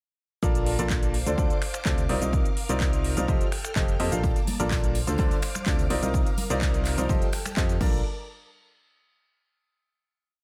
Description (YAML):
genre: piano house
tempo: 126 BPM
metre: 4/4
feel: straight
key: Bb major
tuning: A4 = 443 Hz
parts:
  - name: string machine, violins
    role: sustained chords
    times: 0.4-8.0 s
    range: Bb3 to F6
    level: -41 LUFS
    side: equal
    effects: ensemble chorus, vintage 12-bit sampler grit, sidechain pumping
  - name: clear baby grand piano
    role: riff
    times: 0.4-8.0 s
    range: Bb2 to F5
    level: -32 LUFS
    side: equal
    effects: sidechain pumping, delay
  - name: solid FM bass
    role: bass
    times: 0.4-8.0 s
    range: F1 to F2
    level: -31 LUFS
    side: equal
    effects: sidechain pumping
  - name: electronic kick drum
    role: drums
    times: 0.4-7.9 s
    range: none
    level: -28 LUFS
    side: equal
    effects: overdrive
  - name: house drum kit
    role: drums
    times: 0.4-7.9 s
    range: crash cymbal, finger snaps, handclaps, hi-hat, shaker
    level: -36 LUFS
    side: equal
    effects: overdrive
  - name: tambourine and congas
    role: percussion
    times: 4.2-8.0 s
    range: none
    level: -41 LUFS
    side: equal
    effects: none
room: little or no reverb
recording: none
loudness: -25 LUFS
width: mono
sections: 0.4-8.0 drop; 8.0-9.9 final hit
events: drop 0.4-8.0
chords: 0.4 Bbmaj7; 1.1 Dm7; 2.1 Cm11; 3.3 F9; 4.2 Bbmaj7; 5.0 Dm7; 5.9 Cm11; 7.1 F9; 7.8 Bbmaj7; 8.0 N.C.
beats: | 0.43 0.90 1.38 1.85 | 2.33 2.81 3.28 3.76 | 4.24 4.71 5.19 5.66 | 6.14 6.62 7.09 7.57